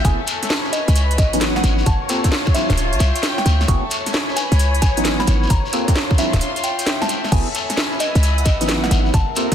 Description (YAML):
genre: UK garage, two-step garage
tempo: 132 BPM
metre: 4/4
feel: swing 66% on 16ths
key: unclear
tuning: A4 = 440 Hz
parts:
  - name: soft synth bell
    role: melody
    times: 0.0-9.4 s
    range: D#5 to C#6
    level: -27 LUFS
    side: left 1 dB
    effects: chorus, digital delay
  - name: soft string machine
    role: sustained chords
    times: 0.0-9.5 s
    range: C#5 to E5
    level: -29 LUFS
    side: equal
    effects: phaser, ensemble chorus, sidechain pumping
  - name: percussive organ stab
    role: stabs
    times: 0.0-9.5 s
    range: E3 to A4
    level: -24 LUFS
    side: equal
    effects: wide subtle chorus, tape echo
  - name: short 808-style bass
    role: bass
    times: 0.0-9.3 s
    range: D1 to D2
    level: -18 LUFS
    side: equal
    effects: none
  - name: electronic kick drum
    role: drums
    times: 0.0-9.5 s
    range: none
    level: -19 LUFS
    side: equal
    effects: none
  - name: garage drum kit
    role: drums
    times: 0.0-9.5 s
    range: crash cymbal, hi-hat, snare drum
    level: -23 LUFS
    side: right 1 dB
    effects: none
  - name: shekere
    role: percussion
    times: 0.0-9.5 s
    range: none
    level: -28 LUFS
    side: left 2 dB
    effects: none
  - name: warm studio string section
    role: texture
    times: 0.0-9.5 s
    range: E3 to D#6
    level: -27 LUFS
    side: left 2 dB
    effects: sidechain pumping
room: little or no reverb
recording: dense, heavily limited modern master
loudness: -15 LUFS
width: side -9 dB against mid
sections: 0.0-9.5 A section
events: break 6.4-7.3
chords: 0.0 F#m11; 0.7 C#m11; 1.9 Gm11; 2.5 Dm11; 3.7 F#m11; 4.4 C#m11; 5.5 Gm11; 6.2 Dm11; 7.3 F#m11; 8.0 C#m11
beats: | 0.05 0.50 0.96 1.41 | 1.86 2.32 2.77 3.23 | 3.68 4.14 4.59 5.05 | 5.50 5.96 6.41 6.87 | 7.32 7.77 8.23 8.68 | 9.14